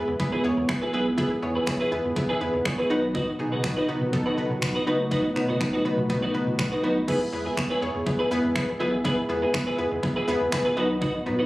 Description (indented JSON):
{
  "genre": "dance-pop",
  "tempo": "122 BPM",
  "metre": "4/4",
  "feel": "straight",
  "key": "E major",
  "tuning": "A4 = 440 Hz",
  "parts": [
    { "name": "analog pluck", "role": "accompaniment", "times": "0.0-11.4 s", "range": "B3 to C#5", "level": "-27 LUFS", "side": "equal", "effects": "chorus, sidechain pumping" },
    { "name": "chorused pulse-width pad", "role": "sustained chords", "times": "0.0-11.5 s", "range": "D#3 to G#4", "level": "-31 LUFS", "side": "equal", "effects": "sidechain pumping" },
    { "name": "saturated sub bass", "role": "bass", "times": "0.0-11.4 s", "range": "E1 to B2", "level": "-34 LUFS", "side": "equal", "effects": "sidechain pumping" },
    { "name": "twelve-string electric guitar", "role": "riff", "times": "0.1-11.5 s", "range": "D#4 to B4", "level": "-27 LUFS", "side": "right 1 dB", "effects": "ensemble chorus" },
    { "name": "pop drum kit", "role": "drums", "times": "0.2-11.1 s", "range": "crash cymbal, finger snaps, kick drum", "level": "-30 LUFS", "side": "equal", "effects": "none" }
  ],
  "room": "little or no reverb",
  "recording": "recorded on a phone in the room, studio reverb",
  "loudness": "-23 LUFS",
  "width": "side -18 dB against mid",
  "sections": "0.0-7.1 A section; 7.1-11.5 B section",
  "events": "none",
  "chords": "0.0 E; 2.9 B; 7.1 E; 10.8 B",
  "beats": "0.20 0.69 | 1.18 1.67 2.17 2.66 | 3.15 3.64 4.13 4.62 | 5.12 5.61 6.10 6.59 | 7.08 7.58 8.07 8.56 | 9.05 9.54 10.03 10.53 | 11.02"
}